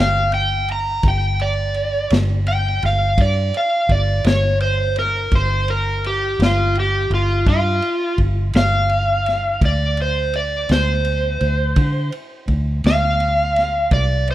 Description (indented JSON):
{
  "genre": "slow blues",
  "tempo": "56 BPM (dotted quarters)",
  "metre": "12/8",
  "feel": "straight",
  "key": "G minor",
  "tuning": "A4 = 435 Hz",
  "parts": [
    { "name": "overdriven slide guitar", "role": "melody", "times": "0.0-14.3 s", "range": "F4 to Bb5", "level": "-19 LUFS", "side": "equal", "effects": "none" },
    { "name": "vintage muted fingered electric bass", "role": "bass", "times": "0.0-14.3 s", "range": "G1 to D3", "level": "-19 LUFS", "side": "equal", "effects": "none" },
    { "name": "vintage drum kit", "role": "drums", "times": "0.3-14.3 s", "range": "kick drum, ride cymbal, snare drum", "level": "-21 LUFS", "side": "equal", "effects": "none" }
  ],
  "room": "light reverb",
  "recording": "rough home demo mix",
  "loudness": "-16 LUFS",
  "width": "side -14 dB against mid",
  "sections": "0.0-14.3 A section",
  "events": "electric slide guitar solo 0.0-14.3",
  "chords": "0.0 G5; 9.6 Dm7",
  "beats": "| 1.04 2.11 3.18 4.25 | 5.32 6.39 7.47 8.54 | 9.62 10.69 11.77 12.84 | 13.92"
}